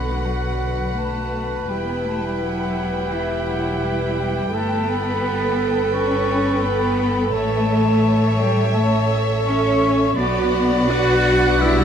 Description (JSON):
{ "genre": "cinematic, emotional film score for orchestra", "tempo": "85 BPM", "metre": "4/4", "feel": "rubato", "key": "B minor", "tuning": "A4 = 442 Hz", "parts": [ { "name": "rich studio violin section", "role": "melody", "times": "0.0-11.8 s", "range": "D5 to G5", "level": "-31 LUFS", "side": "equal", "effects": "none" }, { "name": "rich studio violin section", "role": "second line", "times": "0.0-11.8 s", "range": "B4 to D5", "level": "-31 LUFS", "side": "left 2 dB", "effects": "none" }, { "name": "silver concert flute", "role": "second line", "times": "0.0-11.8 s", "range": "E5 to F#6", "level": "-27 LUFS", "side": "left 3 dB", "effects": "none" }, { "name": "warm clarinet", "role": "second line", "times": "0.0-11.8 s", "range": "F#4 to A4", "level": "-30 LUFS", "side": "right 7 dB", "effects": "none" }, { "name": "warm oboe", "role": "second line", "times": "0.0-11.8 s", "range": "B4 to D5", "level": "-30 LUFS", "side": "equal", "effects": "none" }, { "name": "rich studio viola section", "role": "accompaniment", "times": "0.0-11.8 s", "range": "D3 to B4", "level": "-26 LUFS", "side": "right 5 dB", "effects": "none" }, { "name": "mellow French horn section", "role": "sustained chords", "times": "0.0-11.8 s", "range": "D4 to C#5", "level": "-27 LUFS", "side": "equal", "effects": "stereo widening" }, { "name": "rich studio cello section", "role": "bass", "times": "0.0-11.8 s", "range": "E3 to F#4", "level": "-23 LUFS", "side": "left 1 dB", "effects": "none" }, { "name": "warm studio double bass section", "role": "bass", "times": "0.0-11.8 s", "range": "E1 to B1", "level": "-24 LUFS", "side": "equal", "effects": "none" } ], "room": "moderate cathedral reverb, RT60 6.1 s", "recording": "in a vast, echoing space", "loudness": "-17 LUFS", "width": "side -8 dB against mid", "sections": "0.0-11.8 A section", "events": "none", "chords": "0.0 Bm; 1.7 Emadd9; 4.5 Gadd9; 7.3 A; 10.2 Bm" }